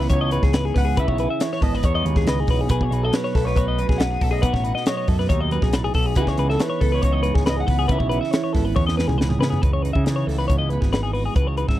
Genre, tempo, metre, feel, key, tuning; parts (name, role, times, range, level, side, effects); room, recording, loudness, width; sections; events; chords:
math rock and midwest emo; 138 BPM; 4/4; straight; A4 = 438 Hz
twelve-string electric guitar; accompaniment; 0.0-11.8 s; F#2 to F#4; -27 LUFS; right 6 dB
twelve-string electric guitar; arpeggios; 0.0-11.8 s; G#4 to E5; -26 LUFS; left 5 dB
growling picked electric bass; bass; 0.0-11.8 s; G#1 to C#3; -23 LUFS; equal; overdrive
crisp fusion drum kit; drums; 0.0-11.8 s; hi-hat, kick drum, snare drum, toms; -22 LUFS; equal
electric guitar through a small old amp; melody; 0.1-9.2 s; G#4 to F#5; -28 LUFS; left 1 dB
studio ambience; dry, close 1970s-style studio recording; -18 LUFS; side -14 dB against mid
0.0-9.6 A section; 9.6-11.8 B section
drum fill 8.8-9.6
0.0 C#m9; 2.7 B7; 6.2 C#m9; 9.6 C#m11